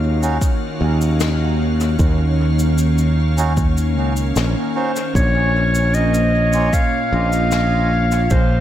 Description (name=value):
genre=ambient dub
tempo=76 BPM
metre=4/4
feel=straight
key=unclear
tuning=A4 = 438 Hz
part: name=soft additive organ-like pad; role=sustained chords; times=0.0-8.6 s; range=Bb2 to F5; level=-23 LUFS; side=left 1 dB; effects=ensemble chorus, built-in reverb
part: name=modern bright fingered electric bass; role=bass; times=0.0-8.6 s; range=Bb1 to Eb2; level=-17 LUFS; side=equal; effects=none
part: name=melodica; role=stabs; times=0.2-6.7 s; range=Bb3 to Gb4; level=-28 LUFS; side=right 3 dB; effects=dub echo
part: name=cabasa and snare drum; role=drums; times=0.2-8.5 s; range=none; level=-28 LUFS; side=left 4 dB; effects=dub echo
part: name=electronic kick drum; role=drums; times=0.4-8.5 s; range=none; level=-18 LUFS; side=equal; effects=none
part: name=mellow clarinet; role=melody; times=4.8-8.6 s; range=C5 to F5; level=-20 LUFS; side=equal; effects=dub echo
room=light reverb, studio ambience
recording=echo-heavy mix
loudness=-15 LUFS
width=side -11 dB against mid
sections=0.0-8.6 A section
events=none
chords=0.0 Ebm7; 5.2 Bbm